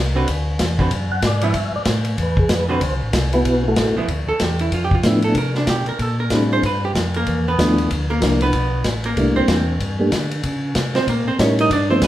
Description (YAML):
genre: soul jazz organ trio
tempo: 189 BPM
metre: 4/4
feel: swing 61% on 8ths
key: unclear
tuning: A4 = 442 Hz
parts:
  - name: mellow tonewheel organ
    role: bass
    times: 0.0-12.1 s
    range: A1 to D3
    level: -22 LUFS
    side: equal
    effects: chorus vibrato, slow rotary speaker
  - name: archtop guitar, miked and amplified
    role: accompaniment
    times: 0.2-12.1 s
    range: D3 to Eb5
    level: -22 LUFS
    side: right 2 dB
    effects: none
  - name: vintage drum kit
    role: drums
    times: 0.3-12.1 s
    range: hi-hat, kick drum, ride cymbal, snare drum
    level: -22 LUFS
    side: left 1 dB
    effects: none
  - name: percussive tonewheel organ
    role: melody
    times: 1.1-12.1 s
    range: F3 to F#5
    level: -20 LUFS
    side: equal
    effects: slow rotary speaker, chorus vibrato
room: wet large studio reverb, RT60 1.2 s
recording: heard from further back in the room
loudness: -16 LUFS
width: side -13 dB against mid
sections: 0.0-4.1 A section; 4.1-12.1 A section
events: tonewheel organ solo 0.0-4.1; hollow-body jazz guitar solo 4.1-12.1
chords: 0.3 D69; 1.5 Gsus2; 2.2 E5; 2.8 D13; 4.1 Dm69; 5.4 C13; 6.6 G13; 7.9 Dm7; 8.5 Asus2; 9.2 C13; 10.4 C#dim7